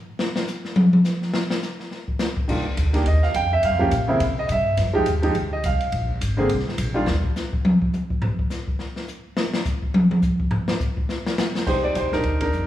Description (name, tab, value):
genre	jazz piano trio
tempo	209 BPM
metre	4/4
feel	swing 59% on 8ths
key	C minor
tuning	A4 = 440 Hz
part	open jazz drum kit	drums	0.2-12.6 s	crash cymbal, hi-hat, kick drum, ride cymbal, snare drum, toms	-22 LUFS	left 1 dB	none
part	warm baby grand piano	melody	2.5-7.1, 11.7-12.7 s	Db3 to G5	-22 LUFS	right 1 dB	none
part	upright bass	bass	2.5-7.2, 11.7-12.7 s	Ab1 to C3	-23 LUFS	equal	none
room	moderate recital hall reverb, RT60 1.6 s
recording	recorded in a church or concert hall, small room ambience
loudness	-20 LUFS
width	side -12 dB against mid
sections	0.0-2.5 A section; 2.5-11.7 A section; 11.7-12.7 B section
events	grand piano solo 0.0-11.7; drum solo 0.0-2.5, 7.1-11.7; band accent 12.4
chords	0.0 N.C.; 2.5 Cm11; 3.6 Gm7b5 (rootless); 4.2 C; 4.8 F7(no3); 5.9 Bb7sus2; 7.1 N.C.; 11.7 Cm9